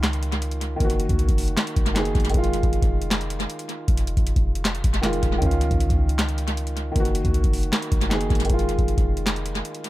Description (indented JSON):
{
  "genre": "hip hop, trap",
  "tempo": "156 BPM",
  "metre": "4/4",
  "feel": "half-time",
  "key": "F phrygian",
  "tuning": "A4 = 440 Hz",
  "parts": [
    { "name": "dark baby grand piano", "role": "accompaniment", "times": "0.0-9.9 s", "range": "Eb3 to Ab4", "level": "-27 LUFS", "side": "equal", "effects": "low-pass filter" },
    { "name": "clean 808-style bass", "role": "bass", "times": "0.0-9.6 s", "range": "Eb1 to Db2", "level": "-24 LUFS", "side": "equal", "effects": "none" },
    { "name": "booming analog drum machine", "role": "drums", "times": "0.0-9.9 s", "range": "handclaps, hi-hat, kick drum, snare drum", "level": "-23 LUFS", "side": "equal", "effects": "tape echo" }
  ],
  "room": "little or no reverb",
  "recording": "echo-heavy mix",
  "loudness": "-20 LUFS",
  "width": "side -16 dB against mid",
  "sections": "0.0-8.5 A section; 8.5-9.9 B section",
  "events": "none",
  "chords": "0.0 Dbadd9; 0.8 Gb6; 2.3 Fm7; 5.4 Dbadd9; 7.0 Gb6; 8.5 Fm7"
}